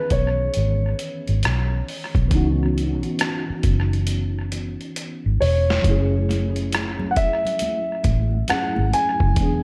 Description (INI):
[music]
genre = R&B, neo-soul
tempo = 68 BPM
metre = 4/4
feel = swing 63% on 16ths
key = unclear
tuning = A4 = 438 Hz
[part]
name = warm concert grand piano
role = melody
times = 0.0-9.6 s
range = B4 to G#5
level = -27 LUFS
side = equal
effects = none
[part]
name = tine electric piano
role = accompaniment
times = 0.0-9.6 s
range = D#3 to G#4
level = -30 LUFS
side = equal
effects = ensemble chorus, tape echo
[part]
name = vintage muted fingered electric bass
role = bass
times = 0.1-9.6 s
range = E1 to C#2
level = -24 LUFS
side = equal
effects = none
[part]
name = boom bap sampler-style drum kit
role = drums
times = 0.1-9.6 s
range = hi-hat, kick drum, rim click, snare drum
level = -27 LUFS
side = equal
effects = tape echo
[part]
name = congas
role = percussion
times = 5.8-9.6 s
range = none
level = -36 LUFS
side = equal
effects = none
[sound]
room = light reverb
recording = echo-heavy mix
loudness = -21 LUFS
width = mono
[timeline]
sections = 0.0-5.8 A section; 5.8-9.6 B section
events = drum fill 4.1-5.8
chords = 0.0 C#m9; 5.8 F#m9